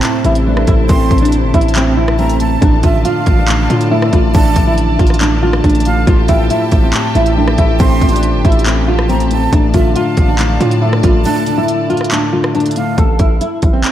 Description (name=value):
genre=hip hop, trap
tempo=139 BPM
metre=4/4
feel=half-time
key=unclear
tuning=A4 = 445 Hz
part: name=nylon-string guitar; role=melody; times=0.0-13.9 s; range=C4 to A4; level=-16 LUFS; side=right 1 dB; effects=ensemble chorus, low-pass filter, tape echo
part: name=breathy jazz flute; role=second line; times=0.0-13.0 s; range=E5 to C6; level=-23 LUFS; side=right 4 dB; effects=tape echo
part: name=dark concert grand piano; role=accompaniment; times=0.0-13.0 s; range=A2 to A3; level=-18 LUFS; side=left 3 dB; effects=lush chorus, low-pass filter
part: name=clear symphonic string section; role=sustained chords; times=0.0-12.9 s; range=F3 to A5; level=-25 LUFS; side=left 1 dB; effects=none
part: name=distorted 808-style bass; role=bass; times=0.0-13.8 s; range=G1 to A2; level=-15 LUFS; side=equal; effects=distortion
part: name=trap drum kit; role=drums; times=0.0-13.9 s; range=handclaps, hi-hat, kick drum, rim click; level=-15 LUFS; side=equal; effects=none
room=moderate lush hall reverb, RT60 1.9 s, small room reverb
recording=dreamy mix soaked in reverb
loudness=-10 LUFS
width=side -12 dB against mid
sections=0.0-13.0 A section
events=break 11.3-13.0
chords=0.0 Am; 2.6 Dm/A; 6.1 Fadd9/A; 9.5 Dm/A; 13.0 A5